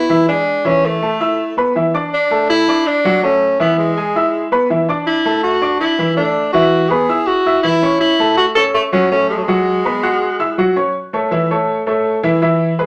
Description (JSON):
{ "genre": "latin", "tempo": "163 BPM", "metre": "4/4", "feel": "straight", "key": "A major", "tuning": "A4 = 440 Hz", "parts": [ { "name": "warm tenor saxophone", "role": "melody", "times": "0.0-10.6 s", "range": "F#3 to A4", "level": "-17 LUFS", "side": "equal", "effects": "none" }, { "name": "clear baby grand piano", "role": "accompaniment", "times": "0.0-12.9 s", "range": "E3 to F#6", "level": "-18 LUFS", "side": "equal", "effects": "none" } ], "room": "wet studio reverb, RT60 0.6 s", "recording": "none", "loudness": "-15 LUFS", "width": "mono", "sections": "0.0-10.9 A section; 10.9-12.9 B section", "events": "none", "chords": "0.0 E; 0.6 Asus2; 2.1 D; 3.6 E; 5.1 Dsus2; 6.5 Esus2; 8.0 F#m; 9.5 Eadd9; 10.9 A", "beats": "0.28 | 0.65 1.02 1.38 1.75 | 2.12 2.49 2.86 3.22 | 3.59 3.96 4.33 4.70 | 5.06 5.43 5.80 6.17 | 6.54 6.90 7.27 7.64 | 8.01 8.37 8.74 9.11 | 9.47 9.84 10.21 10.58 | 10.95 11.31 11.68 12.05 | 12.41 12.78" }